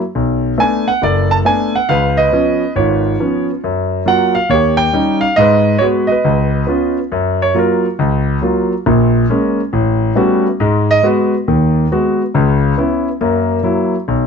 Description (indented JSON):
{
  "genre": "solo jazz",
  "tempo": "138 BPM",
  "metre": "4/4",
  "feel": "swing 65% on 8ths",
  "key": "F# major",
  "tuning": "A4 = 442 Hz",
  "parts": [
    { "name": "warm concert grand piano", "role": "solo", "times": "0.2-14.3 s", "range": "F#1 to A5", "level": "-12 LUFS", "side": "equal", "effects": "none" }
  ],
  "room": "moderate studio reverb, RT60 0.8 s",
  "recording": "nothing above 7.9 kHz",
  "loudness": "-12 LUFS",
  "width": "side -6 dB against mid",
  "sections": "0.0-7.1 A section; 7.1-14.3 B section",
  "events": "grand piano solo 7.1-14.3",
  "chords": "0.1 Bm7; 1.9 C#7; 3.6 F#maj7; 4.5 D#7; 5.4 G#m7; 6.2 C#7; 7.1 F#maj7; 8.9 A#m7; 9.7 A13; 10.6 G#m7; 12.3 C#m7; 13.2 F#7"
}